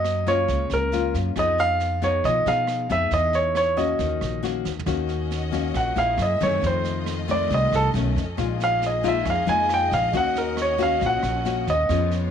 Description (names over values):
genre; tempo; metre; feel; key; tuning
bossa nova; 137 BPM; 4/4; straight; Eb minor; A4 = 440 Hz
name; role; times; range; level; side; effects
clear concert grand piano; melody; 0.0-12.1 s; A4 to Ab5; -22 LUFS; right 2 dB; none
nylon-string guitar; accompaniment; 0.0-12.3 s; F2 to Ab4; -27 LUFS; left 13 dB; none
upright bass; bass; 0.0-12.3 s; Bb1 to Cb3; -27 LUFS; right 1 dB; none
vintage brush drum kit; drums; 0.0-12.2 s; kick drum, rim click, snare drum, toms; -35 LUFS; right 7 dB; none
warm symphonic string section; sustained chords; 4.9-12.3 s; A3 to Fb5; -34 LUFS; left 1 dB; none
room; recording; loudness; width
light reverb, small room ambience; 1960s-style stereo with parts hard left and right; -20 LUFS; side -8 dB against mid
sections
0.0-4.9 A section; 4.9-12.3 B section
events
drum fill 4.7; grand piano solo 4.9-12.3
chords
0.0 Gbmaj7; 1.4 Fm7b5; 3.1 Emaj7; 4.0 Ebm7; 6.2 Gb9; 6.6 F7; 7.9 B9; 8.4 Bb7sus4; 10.1 Ebm7